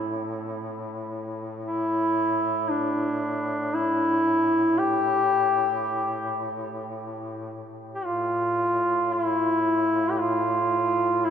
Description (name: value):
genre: caucasian folk, Caucasian lament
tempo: free time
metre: none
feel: none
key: unclear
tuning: A4 = 440 Hz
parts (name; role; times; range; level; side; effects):
- warm duduk; melody; 0.0-11.3 s; D4 to G4; -23 LUFS; equal; none
- warm duduk; drone; 0.0-11.3 s; A2; -34 LUFS; left 1 dB; none
room: wet cathedral reverb, RT60 5.3 s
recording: in a vast, echoing space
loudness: -22 LUFS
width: side -8 dB against mid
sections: 0.0-11.3 A section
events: none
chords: none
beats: free time